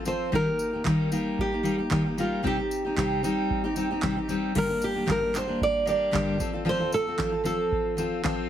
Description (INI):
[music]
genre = acoustic pop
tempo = 114 BPM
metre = 4/4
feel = swing 55% on 16ths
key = G minor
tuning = A4 = 440 Hz
[part]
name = fingerpicked steel-string acoustic guitar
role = accompaniment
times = 0.0-8.5 s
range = G2 to A4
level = -27 LUFS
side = left 1 dB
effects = none
[part]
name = nylon-string guitar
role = melody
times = 0.1-8.5 s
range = F4 to D5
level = -28 LUFS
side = right 2 dB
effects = none
[part]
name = booming analog drum machine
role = drums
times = 0.1-8.4 s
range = crash cymbal, handclaps, kick drum, tambourine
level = -34 LUFS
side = right 2 dB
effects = none
[sound]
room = light reverb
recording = heavily compressed radio sound, multiband compression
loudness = -24 LUFS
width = side -10 dB against mid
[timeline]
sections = 0.0-4.6 A section; 4.6-8.5 B section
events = none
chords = 0.3 Eb; 2.4 Cm; 4.6 Gm; 6.4 F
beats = | 0.33 0.86 1.39 1.92 | 2.44 2.97 3.50 4.03 | 4.56 5.08 5.61 6.14 | 6.67 7.19 7.72 8.24